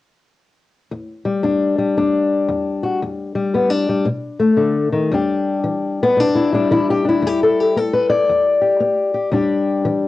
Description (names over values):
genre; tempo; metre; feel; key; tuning
acoustic country blues, solo or duo; 114 BPM; 4/4; swing 64% on 8ths; E minor; A4 = 441 Hz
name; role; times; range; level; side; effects
fingerpicked old ladder-braced acoustic guitar; solo; 0.9-10.1 s; E2 to D5; -15 LUFS; left 3 dB; cassette tape
room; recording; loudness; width
moderate studio reverb, RT60 0.6 s; home recording on cassette; -15 LUFS; side -15 dB against mid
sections
0.9-5.1 A section; 5.1-10.1 B section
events
none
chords
0.9 Em7; 4.1 B7#9; 5.1 Em7